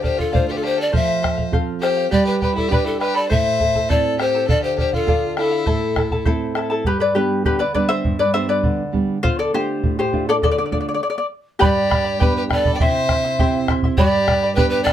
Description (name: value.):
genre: andean folk, Andean ensemble.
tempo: 101 BPM.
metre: 2/4.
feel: straight.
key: unclear.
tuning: A4 = 440 Hz.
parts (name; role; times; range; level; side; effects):
mellow polished pan flute; melody; 0.0-6.2, 11.6-14.9 s; A4 to G5; -20 LUFS; left 1 dB; none.
clear violin; second line; 0.0-6.2, 11.6-14.9 s; E4 to D5; -26 LUFS; equal; none.
charango; accompaniment; 0.0-14.9 s; E4 to C6; -22 LUFS; left 2 dB; none.
nylon-string guitar; accompaniment; 0.0-14.9 s; G2 to B4; -24 LUFS; right 5 dB; none.
bombo; percussion; 0.0-14.9 s; none; -21 LUFS; equal; none.
room: light reverb.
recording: none.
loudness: -16 LUFS.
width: side -11 dB against mid.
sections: 0.0-6.9 A section; 6.9-11.6 B section; 11.6-14.9 C section.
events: charango solo 6.9-11.6; stop 11.0-11.6.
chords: 0.0 Dm; 0.9 F; 2.1 G; 3.3 Am; 4.5 Dm; 5.7 Am; 6.9 G; 9.2 Dm; 11.6 G; 12.8 C; 14.0 G.